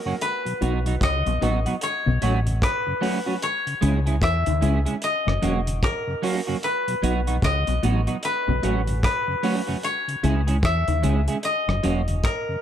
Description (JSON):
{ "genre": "roots reggae", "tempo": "75 BPM", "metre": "4/4", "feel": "swing 61% on 16ths", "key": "unclear", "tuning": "A4 = 440 Hz", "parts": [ { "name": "koto", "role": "melody", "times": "0.0-12.6 s", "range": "A#4 to E5", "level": "-26 LUFS", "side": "left 2 dB", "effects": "tape echo" }, { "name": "clean electric guitar", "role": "accompaniment", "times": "0.1-12.0 s", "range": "F#3 to G#4", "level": "-27 LUFS", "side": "right 5 dB", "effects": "analog chorus" }, { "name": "mellow tonewheel organ", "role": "accompaniment", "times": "0.1-12.6 s", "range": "F#2 to F#4", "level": "-31 LUFS", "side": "left 2 dB", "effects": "chorus vibrato" }, { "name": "cloth-damped thuddy drum kit", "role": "drums", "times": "0.2-12.5 s", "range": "hi-hat, kick drum, rim click", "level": "-28 LUFS", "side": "equal", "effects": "none" }, { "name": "mellow electric guitar", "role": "riff", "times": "0.6-12.1 s", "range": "E2 to E3", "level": "-29 LUFS", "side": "left 5 dB", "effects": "lush chorus" }, { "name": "deep dub fingered electric bass", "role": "bass", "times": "0.6-12.2 s", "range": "E1 to E2", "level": "-23 LUFS", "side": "equal", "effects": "none" } ], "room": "light reverb, studio reverb", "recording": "cassette tape", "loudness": "-20 LUFS", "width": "side -10 dB against mid", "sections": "0.0-12.6 A section", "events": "none", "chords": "0.2 B; 1.8 F#m; 3.4 C#m; 5.0 F#; 6.6 B; 8.2 F#m; 9.8 C#m; 11.4 F#" }